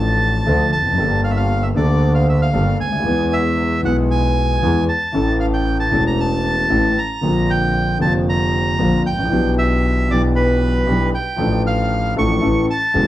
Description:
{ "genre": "tango", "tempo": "116 BPM", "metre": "4/4", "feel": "rubato", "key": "unclear", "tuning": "A4 = 440 Hz", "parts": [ { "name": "bandoneon", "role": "melody", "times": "0.0-13.1 s", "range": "B4 to C#6", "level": "-21 LUFS", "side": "right 2 dB", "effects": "plate reverb" }, { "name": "warm concert grand piano", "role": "accompaniment", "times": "0.0-13.1 s", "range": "E1 to A4", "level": "-18 LUFS", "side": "left 1 dB", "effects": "none" }, { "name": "clear double bass", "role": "bass", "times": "0.0-13.1 s", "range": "E1 to E2", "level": "-20 LUFS", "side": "equal", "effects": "none" } ], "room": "wet studio reverb, RT60 0.5 s", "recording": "heard from further back in the room, vinyl crackle", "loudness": "-15 LUFS", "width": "side -14 dB against mid", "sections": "0.0-13.1 A section", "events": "none", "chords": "0.0 Dm; 1.0 Gmadd9; 3.1 E; 5.1 A; 7.2 Bbadd9; 9.3 G6/B; 11.4 Dm/A; 12.4 A", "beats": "0.47 | 0.99 1.51 2.03 2.54 | 3.06 3.58 4.10 4.62 | 5.14 5.66 6.18 6.71 | 7.23 7.75 8.27 8.79 | 9.32 9.84 10.36 10.88 | 11.40 11.91 12.43 12.95" }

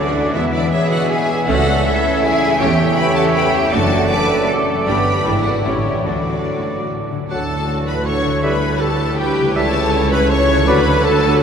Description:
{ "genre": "classical, dramatic, fast romantic movement for symphony orchestra", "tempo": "159 BPM", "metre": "3/4", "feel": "rubato", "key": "D major", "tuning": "A4 = 439 Hz", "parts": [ { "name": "rich symphonic violin section", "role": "melody", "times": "0.0-11.4 s", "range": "D5 to D6", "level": "-24 LUFS", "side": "left 3 dB", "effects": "none" }, { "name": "hollow large flute ensemble", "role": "second line", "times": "0.0-11.4 s", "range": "G4 to A5", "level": "-23 LUFS", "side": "left 2 dB", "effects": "none" }, { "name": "mellow cor anglais", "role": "second line", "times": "0.0-10.8 s", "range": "C#5 to F#5", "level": "-26 LUFS", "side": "right 1 dB", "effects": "none" }, { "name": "warm symphonic violin section", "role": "second line", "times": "0.0-11.4 s", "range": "D4 to D5", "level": "-25 LUFS", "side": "left 1 dB", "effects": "none" }, { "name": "rich symphonic viola section", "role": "accompaniment", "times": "0.0-11.4 s", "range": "D3 to C#5", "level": "-26 LUFS", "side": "right 2 dB", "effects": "none" }, { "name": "warm bassoon", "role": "accompaniment", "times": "0.0-10.8 s", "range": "D3 to B3", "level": "-27 LUFS", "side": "right 2 dB", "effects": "none" }, { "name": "dark French horn section", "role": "sustained chords", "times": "0.0-11.4 s", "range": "D3 to A4", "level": "-27 LUFS", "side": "left 1 dB", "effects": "none" }, { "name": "mellow trombone section", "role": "sustained chords", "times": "0.0-11.4 s", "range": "F#2 to B3", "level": "-28 LUFS", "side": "right 3 dB", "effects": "none" }, { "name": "concert harp", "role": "arpeggios", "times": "0.0-11.4 s", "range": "E2 to E6", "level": "-24 LUFS", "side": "left 5 dB", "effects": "none" }, { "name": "warm trumpet", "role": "stabs", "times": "0.0-11.4 s", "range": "G4 to E5", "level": "-24 LUFS", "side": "right 1 dB", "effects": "none" }, { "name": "rich symphonic cello section", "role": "bass", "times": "0.0-11.4 s", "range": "C#3 to B4", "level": "-25 LUFS", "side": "right 2 dB", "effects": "none" }, { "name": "rich symphonic double bass section", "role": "bass", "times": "0.0-11.4 s", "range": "F#1 to E2", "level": "-23 LUFS", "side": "right 2 dB", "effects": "none" }, { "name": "mellow tuba", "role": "bass", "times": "7.3-11.4 s", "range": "C#2 to D2", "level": "-23 LUFS", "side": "right 2 dB", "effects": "none" } ], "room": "wet cathedral reverb, RT60 7.0 s", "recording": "dark, warm production", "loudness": "-14 LUFS", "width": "side -7 dB against mid", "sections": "0.0-7.3 A section; 7.3-11.4 B section", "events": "none", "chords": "0.3 E; 1.5 A/C#; 2.6 A7/E; 3.7 D/F#; 4.9 G; 5.3 E7/G#; 5.7 A7; 6.1 D; 8.4 Em7/D; 9.6 A7/C#; 10.7 D", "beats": "| 0.35 0.73 1.10 | 1.48 1.86 2.23 | 2.61 2.98 3.36 | 3.73 4.11 4.49 | 4.87 5.26 5.66 | 6.07 6.49 6.90 | 7.30 7.68 8.06 | 8.43 8.81 9.18 | 9.56 9.94 10.30 | 10.68 11.05 11.42" }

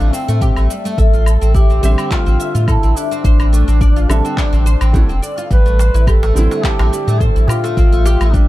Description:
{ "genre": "organic downtempo", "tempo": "106 BPM", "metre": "4/4", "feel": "swing 53% on 16ths", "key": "A minor", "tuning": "A4 = 440 Hz", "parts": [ { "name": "mellow duduk", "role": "melody", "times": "0.0-8.5 s", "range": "C4 to B4", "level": "-21 LUFS", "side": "left 1 dB", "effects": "digital delay" }, { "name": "felt-muted upright piano", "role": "accompaniment", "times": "0.0-7.8 s", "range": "D3 to E5", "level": "-24 LUFS", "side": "right 3 dB", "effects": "sidechain pumping, digital delay" }, { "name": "oud", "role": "arpeggios", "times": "0.0-8.5 s", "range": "G3 to E5", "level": "-23 LUFS", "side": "left 2 dB", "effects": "digital delay" }, { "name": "warm sub bass", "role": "bass", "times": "0.0-8.5 s", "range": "E1 to A2", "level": "-12 LUFS", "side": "equal", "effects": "tube saturation" }, { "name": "electronic shaker, woodblock and handclaps", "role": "drums", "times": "0.0-8.5 s", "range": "none", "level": "-26 LUFS", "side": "left 1 dB", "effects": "none" }, { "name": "electronic kick drum", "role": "drums", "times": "0.4-8.5 s", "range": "none", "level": "-15 LUFS", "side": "equal", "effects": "none" }, { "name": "darbuka", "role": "percussion", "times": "5.8-8.3 s", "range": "none", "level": "-22 LUFS", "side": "right 1 dB", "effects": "none" } ], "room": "small room reverb", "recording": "none", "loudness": "-11 LUFS", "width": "side -16 dB against mid", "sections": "0.0-8.5 A section", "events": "none", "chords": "0.0 Gsus4/A; 1.0 Fmaj7/A; 3.2 D7(no3)/A; 5.5 Am7; 7.8 G9sus4/A", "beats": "0.41 | 0.98 1.55 2.11 2.68 | 3.24 3.81 4.38 4.94 | 5.51 6.07 6.64 7.21 | 7.77 8.34" }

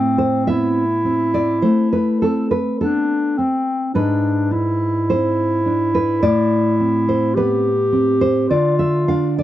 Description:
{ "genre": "romantic duo for clarinet and classical guitar", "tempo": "52 BPM", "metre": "4/4", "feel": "rubato", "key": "A minor", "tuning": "A4 = 442 Hz", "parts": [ { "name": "dark clarinet", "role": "melody", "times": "0.0-9.4 s", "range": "C4 to G4", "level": "-19 LUFS", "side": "left 1 dB", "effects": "none" }, { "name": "nylon-string guitar", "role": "accompaniment", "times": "0.0-9.4 s", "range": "G#2 to F5", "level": "-18 LUFS", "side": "right 1 dB", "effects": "none" } ], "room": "little or no reverb", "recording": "dry, close 1970s-style studio recording", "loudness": "-15 LUFS", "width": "side -13 dB against mid", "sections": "0.0-9.4 A section", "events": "none", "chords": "0.0 Am; 3.9 E7/G#; 6.2 Am; 8.5 Dm", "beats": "0.48 1.63 2.80 | 3.95 5.09 6.23 7.36 | 8.51" }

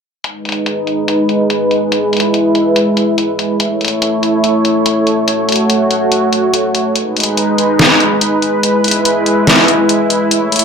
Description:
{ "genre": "heavy wobble dubstep", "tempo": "143 BPM", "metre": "4/4", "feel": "half-time", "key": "G# phrygian", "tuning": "A4 = 440 Hz", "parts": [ { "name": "supersaw pad", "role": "sustained chords", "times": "0.2-10.6 s", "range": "G#3 to C#5", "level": "-12 LUFS", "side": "equal", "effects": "low-pass filter" }, { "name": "dubstep drum kit", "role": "drums", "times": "0.2-10.6 s", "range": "hi-hat, snare drum", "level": "-14 LUFS", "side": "left 1 dB", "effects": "low-pass filter on hats, low-pass filter on snare, low-pass filter on room" } ], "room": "moderate plate reverb, RT60 1.9 s, digital ambience", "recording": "none", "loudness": "-10 LUFS", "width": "side -6 dB against mid", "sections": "0.2-10.6 A section", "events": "filter sweep on supersaw synth 0.2-10.6", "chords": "0.2 G#m; 1.9 E; 3.6 A; 5.3 F#m/A; 7.0 G#m; 8.6 E", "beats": "| 0.24 0.66 1.08 1.50 | 1.92 2.34 2.76 3.18 | 3.60 4.02 4.44 4.86 | 5.28 5.70 6.12 6.54 | 6.96 7.38 7.79 8.21 | 8.63 9.05 9.47 9.89 | 10.31" }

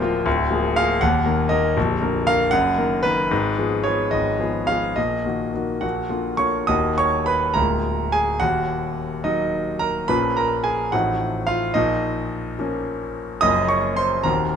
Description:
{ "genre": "classical, romantic character piece for solo piano", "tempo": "67-81 BPM (dotted quarters)", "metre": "6/8", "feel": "rubato", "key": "Eb minor", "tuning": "A4 = 440 Hz", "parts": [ { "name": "warm concert grand piano", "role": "solo", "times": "0.0-14.6 s", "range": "Bb0 to Eb6", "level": "-19 LUFS", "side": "equal", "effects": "none" } ], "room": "light reverb", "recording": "close, detailed microphones", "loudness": "-19 LUFS", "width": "side -7 dB against mid", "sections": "0.0-6.7 A section; 6.7-14.6 B section", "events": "none", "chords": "0.3 Bb7/D; 1.0 Ebm; 1.8 Bb; 2.5 Ebm/Gb; 3.3 Fdim/Ab; 5.0 Ebm/Bb; 5.8 Bb; 6.7 Ebm; 7.6 Bb7/D; 8.4 Ebm; 10.1 Bbm; 10.9 F7/A; 11.8 Bbm; 13.4 Gbmaj7", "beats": "| 0.26 1.01 | 1.76 2.51 | 3.31 4.12 | 4.97 5.83 | 6.69 7.56 | 8.41 9.26 | 10.09 10.93 | 11.75 12.58 | 13.42 14.26" }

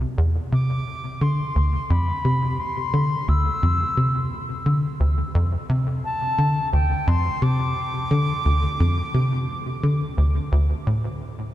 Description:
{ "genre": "ambient", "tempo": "87 BPM", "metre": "4/4", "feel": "straight", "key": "D dorian", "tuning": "A4 = 440 Hz", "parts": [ { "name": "tight sequencer bass", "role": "riff", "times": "0.0-11.1 s", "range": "D2 to D3", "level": "-20 LUFS", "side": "equal", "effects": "lush chorus, analog delay" }, { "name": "silver concert flute", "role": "melody", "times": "0.5-10.9 s", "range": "G5 to E6", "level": "-27 LUFS", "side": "left 1 dB", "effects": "analog delay" } ], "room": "wet huge ambient reverb, RT60 7.8 s", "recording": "dark, warm production", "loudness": "-20 LUFS", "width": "side -13 dB against mid", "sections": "0.0-11.5 A section", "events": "none", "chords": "0.0 N.C.; 0.5 Dm7", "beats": "| 0.52 1.21 1.90 2.59 | 3.28 3.97 4.66 5.35 | 6.04 6.73 7.42 8.11 | 8.80 9.49 10.18 10.87" }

